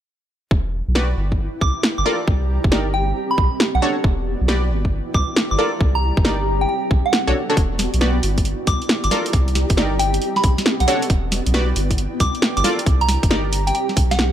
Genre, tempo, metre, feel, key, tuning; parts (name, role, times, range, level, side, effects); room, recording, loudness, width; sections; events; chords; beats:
UK garage, two-step garage; 136 BPM; 4/4; swing 66% on 16ths; E minor; A4 = 440 Hz
soft dub sub bass; bass; 0.5-14.3 s; E1 to C2; -21 LUFS; equal; tube saturation, sidechain pumping
electronic kick drum; drums; 0.5-14.1 s; -20 LUFS; equal
granular cloud pad; texture; 0.9-14.3 s; B3 to G4; -26 LUFS; equal; built-in reverb, sidechain pumping
punchy chord stab; stabs; 1.0-13.4 s; D4 to D5; -23 LUFS; equal; chorus, vintage 12-bit sampler grit
punchy analog drum machine; drums; 1.0-14.3 s; hi-hat, snare drum; -21 LUFS; equal
soft synth bell; melody; 1.6-14.3 s; F#5 to D6; -24 LUFS; right 2 dB; chorus, phaser, dub echo
digital ambience; -16 LUFS; side -10 dB against mid
0.5-14.3 A section
0.5 Em9; 1.2 Gm9; 2.3 Cm9; 3.2 Bm9; 4.0 Em9; 4.7 Gm9; 5.8 Cm9; 6.7 Bm9; 7.6 Em9; 8.2 Gm9; 9.3 Cm9; 10.2 Bm9; 11.1 Em9; 11.8 Gm9; 12.9 Cm9; 13.7 Bm
| 0.51 0.95 1.39 1.83 | 2.28 2.72 3.16 3.60 | 4.04 4.48 4.92 5.37 | 5.81 6.25 6.69 7.13 | 7.57 8.01 8.45 8.89 | 9.34 9.78 10.22 10.66 | 11.10 11.54 11.98 12.42 | 12.87 13.31 13.75 14.19